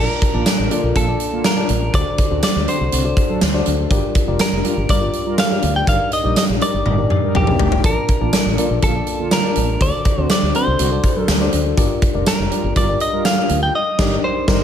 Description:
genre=1980s-style pop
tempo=122 BPM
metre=4/4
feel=straight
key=Bb major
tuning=A4 = 440 Hz
part: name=direct-recorded clean electric guitar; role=melody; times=0.0-14.6 s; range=G4 to G5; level=-22 LUFS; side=equal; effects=ping-pong delay
part: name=mellow FM electric piano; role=accompaniment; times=0.0-14.6 s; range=G2 to A5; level=-23 LUFS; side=left 4 dB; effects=chorus
part: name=mellow fretless electric bass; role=bass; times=0.0-14.6 s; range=F1 to D2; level=-21 LUFS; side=equal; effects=lush chorus
part: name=huge arena drum kit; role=drums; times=0.2-14.6 s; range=crash cymbal, hi-hat, kick drum, snare drum, tambourine, toms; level=-18 LUFS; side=equal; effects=gated reverb
part: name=mellow synth brass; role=stabs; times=0.3-14.6 s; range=D3 to Bb4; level=-27 LUFS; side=right 1 dB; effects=chorus, ping-pong delay
room=light reverb, small room reverb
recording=none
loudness=-15 LUFS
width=side -9 dB against mid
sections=0.0-14.6 A section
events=drum fill 6.9-7.8; band accent 13.7-14.6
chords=0.0 Bbmaj7; 1.9 D7; 3.9 Gm7; 5.9 Ebmaj7/G; 7.8 Bbmaj7; 9.8 D7; 11.8 Gm7; 13.7 Ebmaj7/G

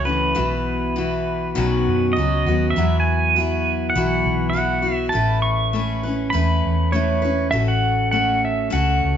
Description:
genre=folk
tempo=100 BPM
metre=4/4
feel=straight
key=unclear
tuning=A4 = 440 Hz
part: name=pedal steel guitar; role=melody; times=0.0-9.2 s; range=B4 to C#6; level=-22 LUFS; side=right 2 dB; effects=none
part: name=picked steel-string acoustic guitar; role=accompaniment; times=0.0-9.2 s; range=B2 to B4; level=-22 LUFS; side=left 1 dB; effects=none
part: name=hollow-body short-scale fingered electric bass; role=bass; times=0.0-9.2 s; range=A1 to F#2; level=-22 LUFS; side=equal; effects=none
room=moderate large studio reverb, RT60 0.9 s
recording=band playing live in one room, nothing above 7.8 kHz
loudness=-18 LUFS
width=side -9 dB against mid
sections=0.0-9.2 A section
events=none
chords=0.4 Bsus4; 1.6 Badd9; 2.8 Esus2; 5.2 Aadd9; 7.5 F#m/A

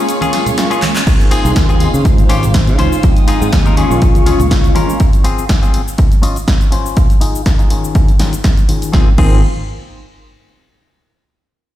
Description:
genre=filtered disco house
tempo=122 BPM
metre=4/4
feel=swing 54% on 16ths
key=Ab major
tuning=A4 = 439 Hz
part: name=mellow synth brass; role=accompaniment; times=0.0-5.0, 8.9-9.4 s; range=Ab3 to G5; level=-19 LUFS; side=equal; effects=chorus, phaser, sidechain pumping, low-pass filter
part: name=dark studio violin section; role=sustained chords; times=0.0-5.0 s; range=Ab3 to Eb6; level=-23 LUFS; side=equal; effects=vintage 12-bit sampler grit, sidechain pumping, low-pass filter
part: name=semi-hollow electric guitar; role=riff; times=0.0-9.4 s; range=Eb3 to Eb5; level=-21 LUFS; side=left 6 dB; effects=sidechain pumping, low-pass filter
part: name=punchy analog drum machine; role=drums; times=0.1-9.3 s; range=crash cymbal, handclaps, hi-hat, shaker, snare drum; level=-22 LUFS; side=equal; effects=sidechain pumping on hats, sidechain pumping on perc, sidechain pumping on cymbals
part: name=tambourine and congas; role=percussion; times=0.1-5.0 s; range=none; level=-24 LUFS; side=right 3 dB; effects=sidechain pumping on perc, low-pass filter on perc
part: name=modern bright fingered electric bass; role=bass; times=1.1-4.7, 8.9-9.4 s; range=Ab1 to Db3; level=-15 LUFS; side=equal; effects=sidechain pumping, low-pass filter
part: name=electronic kick drum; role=drums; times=1.1-9.3 s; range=none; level=-12 LUFS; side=equal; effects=none
room=little or no reverb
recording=played on a big sound system in a bare room, stone room reverb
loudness=-10 LUFS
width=side -13 dB against mid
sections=0.0-1.1 A section; 1.1-8.9 B section; 8.9-10.9 C section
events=break 0.0-1.1; drum fill 0.8; band accent 0.9; filter sweep 1.1-8.9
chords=0.0 Bbm7/Ab; 1.1 Ab6; 2.1 Dbmaj7; 3.0 Fm7; 3.8 Bbm7; 5.0 Ab6; 6.0 Dbmaj7; 7.0 Fm7; 7.7 Eb9sus4; 8.9 Ab6

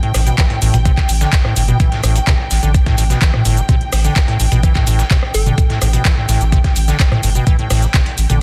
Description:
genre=acid house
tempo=127 BPM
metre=4/4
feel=straight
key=unclear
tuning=A4 = 440 Hz
part: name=acid bass, square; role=riff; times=0.0-8.4 s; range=A2 to E3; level=-22 LUFS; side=equal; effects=analog delay
part: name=booming analog drum machine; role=drums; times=0.0-8.4 s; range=handclaps, hi-hat, rim click, shaker, toms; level=-23 LUFS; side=equal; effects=none
part: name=rich symphonic string section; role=texture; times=0.0-8.4 s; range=G5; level=-28 LUFS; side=equal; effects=sidechain pumping
part: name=saturated sub bass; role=bass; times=0.1-8.4 s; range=G1 to A1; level=-18 LUFS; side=equal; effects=sidechain pumping
part: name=dusty soul sampler-style drum kit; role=drums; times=0.1-8.4 s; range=hi-hat, snare drum, tambourine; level=-30 LUFS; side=equal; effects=sidechain pumping on perc, high-pass filter on perc, sidechain pumping on hats, high-pass filter on hats, high-pass filter on snare
part: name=electronic kick drum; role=drums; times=0.4-8.0 s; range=none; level=-17 LUFS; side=equal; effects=none
part: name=hollow square pluck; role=melody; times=5.3-6.0 s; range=A4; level=-29 LUFS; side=equal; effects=chorus, analog delay
room=digital ambience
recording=dense, heavily limited modern master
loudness=-14 LUFS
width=mono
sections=0.0-8.4 A section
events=none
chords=0.0 A7(no3)

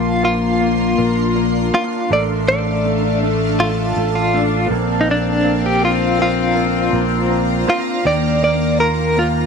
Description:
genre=pop ballad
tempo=80 BPM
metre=4/4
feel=straight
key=Bb major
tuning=A4 = 440 Hz
part: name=direct-recorded clean electric guitar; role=melody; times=0.0-9.5 s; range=D4 to D5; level=-18 LUFS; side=equal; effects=tremolo, slapback echo
part: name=rich studio cello section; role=second line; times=0.0-9.5 s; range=A3 to D4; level=-22 LUFS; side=left 14 dB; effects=none
part: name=felt-muted upright piano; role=accompaniment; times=0.0-9.5 s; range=Eb3 to F4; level=-23 LUFS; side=right 12 dB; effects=none
part: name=shimmering ambient pad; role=sustained chords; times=0.0-9.5 s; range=Eb3 to C6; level=-24 LUFS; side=right 2 dB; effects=chorus, built-in reverb, phaser
part: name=fingered electric bass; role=bass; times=0.0-9.5 s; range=A1 to Eb2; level=-21 LUFS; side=equal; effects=none
room=light reverb, small room ambience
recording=1960s-style stereo with parts hard left and right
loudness=-14 LUFS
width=side -5 dB against mid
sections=0.0-9.5 A section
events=none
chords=0.0 Bbadd9; 2.1 Dm/A; 4.7 Bbadd9; 8.1 Ebsus2

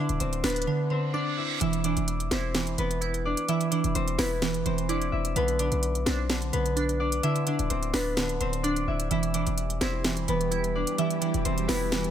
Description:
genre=hip hop, trap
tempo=128 BPM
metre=4/4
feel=half-time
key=E minor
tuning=A4 = 439 Hz
part: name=concert harp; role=melody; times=0.0-12.1 s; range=B3 to E5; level=-30 LUFS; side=left 3 dB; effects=none
part: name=glassy wavetable pluck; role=accompaniment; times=0.0-12.1 s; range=D3 to E4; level=-30 LUFS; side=right 6 dB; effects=chorus
part: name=hard-hitting 808-style bass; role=bass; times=0.1-12.1 s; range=D1 to B1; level=-30 LUFS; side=left 1 dB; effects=none
part: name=trap drum kit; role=drums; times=0.1-12.1 s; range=hi-hat, snare drum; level=-30 LUFS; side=equal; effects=none
part: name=reverse cymbal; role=sound effects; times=0.9-1.6 s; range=none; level=-36 LUFS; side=right 6 dB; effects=none
part: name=granular cloud pad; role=sustained chords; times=9.7-12.1 s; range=E3 to G4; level=-35 LUFS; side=right 1 dB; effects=built-in reverb
room=little or no reverb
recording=none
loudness=-25 LUFS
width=side -10 dB against mid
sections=0.0-1.6 A section; 1.6-12.1 B section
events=reverse cymbal 0.9-1.6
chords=0.0 Cmaj9/D; 1.6 E5; 5.4 Bm; 7.2 Cmaj9/D; 9.1 Em

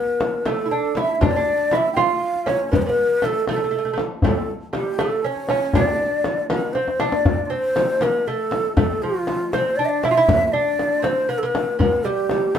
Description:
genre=Persian modal ensemble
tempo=79 BPM (dotted quarters)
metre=6/8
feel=straight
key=D avaz esfahan, A dastgah shur from 7.3 s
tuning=A4 = 440 Hz
part: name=breathy mellow ney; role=melody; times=0.0-12.6 s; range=F4 to G5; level=-21 LUFS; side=equal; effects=none
part: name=lute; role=second line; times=0.0-12.6 s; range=F3 to F4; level=-25 LUFS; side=right 3 dB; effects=none
part: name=frame drum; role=percussion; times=0.2-12.6 s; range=none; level=-27 LUFS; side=left 2 dB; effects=none
part: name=tombak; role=percussion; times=0.2-12.6 s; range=none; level=-22 LUFS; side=left 2 dB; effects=none
room=moderate studio reverb, RT60 0.7 s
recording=band playing live in one room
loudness=-18 LUFS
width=side -8 dB against mid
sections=0.0-7.3 A section; 7.3-12.6 B section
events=drum fill 6.8-7.3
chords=none

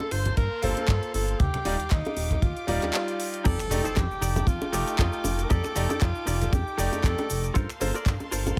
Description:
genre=nu-disco, nu disco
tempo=117 BPM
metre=4/4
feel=swing 55% on 16ths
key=F mixolydian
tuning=A4 = 439 Hz
part: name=breathy tenor saxophone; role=melody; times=0.0-7.4 s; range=Eb4 to C5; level=-34 LUFS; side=equal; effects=dub echo
part: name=warm studio violin section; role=sustained chords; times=0.0-8.6 s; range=Bb3 to D6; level=-43 LUFS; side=equal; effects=sidechain pumping
part: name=bongos, congas and cabasa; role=percussion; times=0.0-8.6 s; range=none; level=-36 LUFS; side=equal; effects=none
part: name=chorused synth bass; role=bass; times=0.1-8.6 s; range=Eb1 to G2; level=-31 LUFS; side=equal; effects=tube saturation
part: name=house drum kit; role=drums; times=0.1-8.6 s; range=cabasa, crash cymbal, finger snaps, handclaps, hi-hat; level=-36 LUFS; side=equal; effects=overdrive
part: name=kick drum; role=drums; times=0.4-8.6 s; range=none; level=-27 LUFS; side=equal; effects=none
part: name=bright grand piano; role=accompaniment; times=0.6-7.9 s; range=G3 to D6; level=-34 LUFS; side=equal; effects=sidechain pumping, tape echo
part: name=direct-recorded clean electric guitar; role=riff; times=3.4-8.6 s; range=Eb4 to Eb5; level=-37 LUFS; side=equal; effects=lush chorus, tape echo
part: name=impact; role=sound effects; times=3.6-5.5 s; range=none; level=-41 LUFS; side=equal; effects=none
room=small room ambience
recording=none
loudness=-26 LUFS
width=mono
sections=0.0-3.5 A section; 3.5-8.6 B section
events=break 2.9-3.5; drop 3.5-8.6; impact 3.5-5.5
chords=0.0 Gm11; 1.4 Ebmaj9; 3.5 F13; 7.6 Gm11

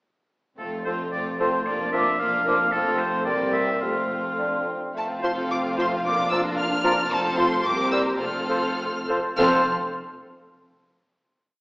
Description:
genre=quick classical-period movement for symphony orchestra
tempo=99-114 BPM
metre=2/4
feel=rubato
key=F major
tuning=A4 = 440 Hz
part: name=rich chamber violin section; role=melody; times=0.6-9.7 s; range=F4 to F6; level=-30 LUFS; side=equal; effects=none
part: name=clear oboe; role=second line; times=0.6-9.6 s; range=A4 to F5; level=-28 LUFS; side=equal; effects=none
part: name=warm studio violin section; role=second line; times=0.6-9.7 s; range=A3 to F5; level=-31 LUFS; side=equal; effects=none
part: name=rich chamber viola section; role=accompaniment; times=0.6-9.7 s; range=A3 to G4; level=-31 LUFS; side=equal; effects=none
part: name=mellow French horn section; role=sustained chords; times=0.6-9.6 s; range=A3 to D4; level=-33 LUFS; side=equal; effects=none
part: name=rich chamber cello section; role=bass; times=0.6-9.7 s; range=C2 to F2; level=-37 LUFS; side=equal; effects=none
part: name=rich studio double bass section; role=bass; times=0.6-9.7 s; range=F1 to C2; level=-38 LUFS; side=equal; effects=none
part: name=mellow clarinet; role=second line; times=0.9-9.6 s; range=F4 to Bb4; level=-30 LUFS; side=equal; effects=none
part: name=mellow large flute ensemble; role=second line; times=0.9-9.7 s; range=Bb5 to D6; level=-29 LUFS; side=equal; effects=none
part: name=warm bassoon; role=accompaniment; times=0.9-9.6 s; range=F3 to D4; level=-29 LUFS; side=equal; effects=none
room=wet scoring stage reverb, RT60 1.6 s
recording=heard from further back in the room, small speaker sound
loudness=-21 LUFS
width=side -38 dB against mid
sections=0.6-5.0 A section; 5.0-9.4 A section; 9.4-10.5 final chord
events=none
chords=0.6 F; 1.7 Bb/F; 2.7 F; 3.3 C7; 3.8 F; 6.0 Bb/F; 7.1 F; 7.6 C7(no3); 8.2 F

